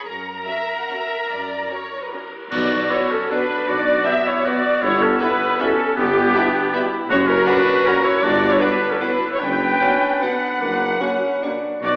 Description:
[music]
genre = classical, orchestral ballroom waltz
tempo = 137-171 BPM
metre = 3/4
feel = rubato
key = B minor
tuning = A4 = 443 Hz
[part]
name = rich symphonic cello section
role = bass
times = 0.0-12.0 s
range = F#2 to A#4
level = -32 LUFS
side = equal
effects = none
[part]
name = rich symphonic violin section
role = melody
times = 0.1-11.5 s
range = F#5 to D6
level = -36 LUFS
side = equal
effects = none
[part]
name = rich symphonic double bass section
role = bass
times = 0.1-12.0 s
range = F#1 to F#2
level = -36 LUFS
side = equal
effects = none
[part]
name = cymbal swell, clash cymbals and concert bass drum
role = percussion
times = 0.1-3.3 s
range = none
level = -38 LUFS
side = equal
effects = none
[part]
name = clear symphonic violin section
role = second line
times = 0.5-11.5 s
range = A#3 to F#5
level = -33 LUFS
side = equal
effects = none
[part]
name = rich symphonic viola section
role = accompaniment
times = 0.5-12.0 s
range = C#4 to G5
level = -25 LUFS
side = equal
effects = none
[part]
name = clear clarinet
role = second line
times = 2.5-12.0 s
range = B3 to F#4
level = -27 LUFS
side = equal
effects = none
[part]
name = large flute ensemble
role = second line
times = 2.5-12.0 s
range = G4 to G5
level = -26 LUFS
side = equal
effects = none
[part]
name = warm oboe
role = second line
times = 2.5-12.0 s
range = B3 to B4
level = -25 LUFS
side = equal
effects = none
[part]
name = mellow tuba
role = bass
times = 2.5-12.0 s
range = F#1 to B1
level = -29 LUFS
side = equal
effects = none
[part]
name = mellow French horn section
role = sustained chords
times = 2.9-11.6 s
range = A#3 to F#4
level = -32 LUFS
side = equal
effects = none
[part]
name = mellow trombone section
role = sustained chords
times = 2.9-11.6 s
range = A#2 to G3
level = -33 LUFS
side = equal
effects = none
[part]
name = clear bassoon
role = accompaniment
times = 9.8-11.8 s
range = A#3 to D4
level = -25 LUFS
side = equal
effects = none
[sound]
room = wet scoring stage reverb, RT60 1.8 s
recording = heard from further back in the room, AM radio sound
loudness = -19 LUFS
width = mono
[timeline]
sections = 0.0-2.5 A section; 2.5-12.0 B section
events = band accent 2.5-2.9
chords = 0.1 F#; 2.5 Bm; 4.8 Em/G; 7.1 F#; 8.2 Gmaj7; 9.4 Bm/F#; 10.6 F#

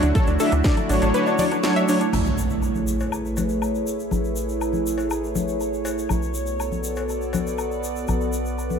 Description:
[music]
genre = progressive house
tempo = 121 BPM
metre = 4/4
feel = straight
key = A major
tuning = A4 = 440 Hz
[part]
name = evolving wavetable pad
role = sustained chords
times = 0.0-8.8 s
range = D3 to D5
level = -25 LUFS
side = right 2 dB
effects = chorus, built-in reverb, sidechain pumping
[part]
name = analog pluck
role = arpeggios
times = 0.0-2.1 s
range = D4 to E5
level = -26 LUFS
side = equal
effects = chorus, cassette tape, sidechain pumping, tape echo
[part]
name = soft supersaw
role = stabs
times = 0.0-2.0 s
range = F#3 to E5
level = -23 LUFS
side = left 1 dB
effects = sidechain pumping, tape echo
[part]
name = tight sequencer bass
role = bass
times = 0.0-8.8 s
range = A1 to D2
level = -28 LUFS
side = equal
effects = sidechain pumping
[part]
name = house drum kit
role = drums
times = 0.0-2.2 s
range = crash cymbal, hi-hat, snare drum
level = -30 LUFS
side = right 1 dB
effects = sidechain pumping on hats, sidechain pumping on cymbals
[part]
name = tube shaker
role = percussion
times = 0.0-8.8 s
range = none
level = -38 LUFS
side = left 3 dB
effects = none
[part]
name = electronic kick drum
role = drums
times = 0.1-0.7 s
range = none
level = -20 LUFS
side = equal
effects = none
[part]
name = congas, woodblock and cowbell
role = percussion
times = 0.2-8.8 s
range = none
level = -30 LUFS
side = left 7 dB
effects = sidechain pumping on perc
[part]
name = impact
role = sound effects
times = 2.1-4.1 s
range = none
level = -28 LUFS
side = right 1 dB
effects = none
[sound]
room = light reverb, digital ambience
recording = none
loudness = -20 LUFS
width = side -7 dB against mid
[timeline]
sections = 0.0-2.1 A section; 2.1-8.8 B section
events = impact 2.1-4.1; filter sweep on ambient pad 2.1-8.8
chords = 0.0 Dmaj7; 2.1 Amaj7; 6.1 Bm7

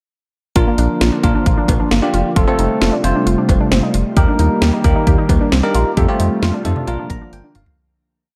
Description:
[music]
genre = synth-pop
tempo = 133 BPM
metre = 4/4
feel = straight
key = Bb major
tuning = A4 = 440 Hz
[part]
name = bell-like tine electric piano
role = accompaniment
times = 0.6-7.8 s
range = A3 to Bb5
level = -22 LUFS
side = equal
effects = lush chorus, shimmer reverb
[part]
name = phased analog pad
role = sustained chords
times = 0.6-7.8 s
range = C3 to G4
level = -23 LUFS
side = equal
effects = phaser, chorus
[part]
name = warbly dusty pluck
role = arpeggios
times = 0.6-7.7 s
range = Bb3 to G4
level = -25 LUFS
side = equal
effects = chorus, slapback echo, shimmer reverb
[part]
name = round analog bass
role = bass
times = 0.6-7.6 s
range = F1 to F2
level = -20 LUFS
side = equal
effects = none
[part]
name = house drum kit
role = drums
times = 0.6-7.8 s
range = cowbell, hi-hat, kick drum, snare drum, toms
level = -19 LUFS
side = equal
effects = none
[sound]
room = light reverb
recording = dark, warm production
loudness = -15 LUFS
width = mono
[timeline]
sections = 0.6-7.8 chorus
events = fade-out 6.0-7.8; tine electric piano fill 6.9-7.8; drum fill 7.3-7.8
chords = 0.6 Bb; 2.4 Fadd9; 4.2 Eb; 6.0 Fadd9; 6.9 Bb

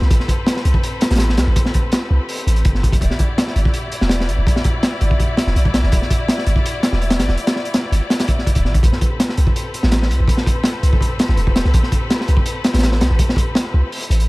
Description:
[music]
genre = drum and bass, jungle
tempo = 165 BPM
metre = 4/4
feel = straight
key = A minor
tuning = A4 = 440 Hz
[part]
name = clear studio string section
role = sustained chords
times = 0.0-14.3 s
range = C4 to D5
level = -26 LUFS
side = left 2 dB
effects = none
[part]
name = warm 808-style bass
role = bass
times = 0.0-14.3 s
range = D1 to C2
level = -16 LUFS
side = equal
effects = none
[part]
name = crunchy breakbeat drum kit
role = drums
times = 0.0-14.3 s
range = hi-hat, kick drum, snare drum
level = -17 LUFS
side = equal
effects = none
[sound]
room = little or no reverb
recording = none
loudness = -14 LUFS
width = side -22 dB against mid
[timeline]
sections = 0.0-14.3 A section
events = none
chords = 0.0 Am9; 3.0 Em9; 8.8 Am9

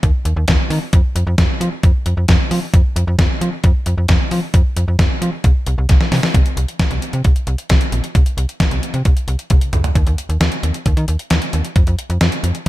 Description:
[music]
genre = synth-pop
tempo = 133 BPM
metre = 4/4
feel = straight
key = unclear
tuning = A4 = 440 Hz
[part]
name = slap-like FM bass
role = bass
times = 0.0-12.7 s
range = Bb1 to F3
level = -17 LUFS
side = equal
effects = none
[part]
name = detuned 8-bit digital drum machine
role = drums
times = 0.0-12.7 s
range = hi-hat, kick drum, snare drum, toms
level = -15 LUFS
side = equal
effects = gated reverb
[sound]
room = little or no reverb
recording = none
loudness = -14 LUFS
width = side -16 dB against mid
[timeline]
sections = 0.0-6.3 A section; 6.3-10.0 B section; 10.0-12.7 C section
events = drum fill 5.9-6.3, 9.5-10.0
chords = none

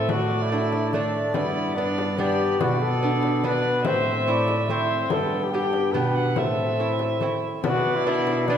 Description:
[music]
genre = classical, renaissance-style consort dance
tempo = 144 BPM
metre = 3/4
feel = straight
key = unclear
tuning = A4 = 440 Hz
[part]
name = warm cornet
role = melody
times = 0.0-8.6 s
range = D4 to D5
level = -26 LUFS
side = left 4 dB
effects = none
[part]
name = dark violin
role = second line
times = 0.0-8.6 s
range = D5 to G5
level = -29 LUFS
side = right 4 dB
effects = none
[part]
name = lute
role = accompaniment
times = 0.0-8.6 s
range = G2 to G4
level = -28 LUFS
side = right 3 dB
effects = none
[part]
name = warm bassoon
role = accompaniment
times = 0.0-8.6 s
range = A3 to C4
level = -28 LUFS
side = left 2 dB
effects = none
[part]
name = rich cello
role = bass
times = 0.0-8.6 s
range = G2 to B2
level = -29 LUFS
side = right 1 dB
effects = none
[part]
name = frame drum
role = percussion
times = 0.1-8.6 s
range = none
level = -31 LUFS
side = left 3 dB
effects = none
[sound]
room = wet recital hall reverb, RT60 1.6 s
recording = heard from further back in the room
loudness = -21 LUFS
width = side -8 dB against mid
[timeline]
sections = 0.0-7.6 A section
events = none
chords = 0.1 D5/A; 1.4 G; 2.6 Bm; 3.9 Am; 5.1 G; 6.4 Am; 7.6 Bm

